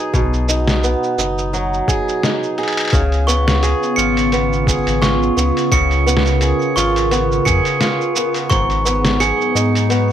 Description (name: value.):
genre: folktronica.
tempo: 86 BPM.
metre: 4/4.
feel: swing 56% on 16ths.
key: Db mixolydian.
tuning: A4 = 441 Hz.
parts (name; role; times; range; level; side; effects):
fingerpicked swing-style acoustic guitar; arpeggios; 0.0-10.1 s; Ab2 to Ab4; -20 LUFS; equal; tape echo.
warm sub bass; bass; 0.1-10.1 s; Gb1 to Ab2; -19 LUFS; left 1 dB; tube saturation.
electronic kick drum; drums; 0.1-8.7 s; none; -19 LUFS; left 1 dB; none.
lo-fi sampler-style drum kit; drums; 0.1-10.1 s; cabasa, hi-hat, snare drum; -21 LUFS; equal; none.
warbly tape-like pad; sustained chords; 3.3-10.1 s; Db3 to Bb4; -20 LUFS; right 1 dB; chorus, built-in reverb.
glockenspiel with soft plastic mallets; second line; 3.3-9.4 s; Db6 to Db7; -20 LUFS; right 2 dB; tape echo.
room: light reverb.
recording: none.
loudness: -14 LUFS.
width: side -10 dB against mid.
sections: 0.0-2.9 A section; 2.9-10.1 B section.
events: band accent 2.2-2.6; drum fill 2.6-2.9.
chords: 0.0 Cb6; 2.9 Db7; 8.5 Abm7.